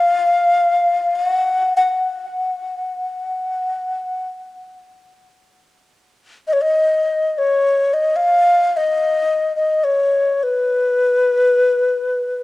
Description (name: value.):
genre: world meditative.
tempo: free time.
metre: none.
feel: none.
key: B lydian.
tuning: A4 = 440 Hz.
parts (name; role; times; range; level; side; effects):
breathy bright xiao; solo; 0.0-12.4 s; B4 to F#5; -15 LUFS; left 2 dB; cassette tape, analog delay.
room: wet spring reverb, RT60 1.7 s, small room ambience.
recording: home recording on cassette.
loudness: -15 LUFS.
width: side -18 dB against mid.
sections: 0.0-12.4 A section.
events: none.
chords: none.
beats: free time.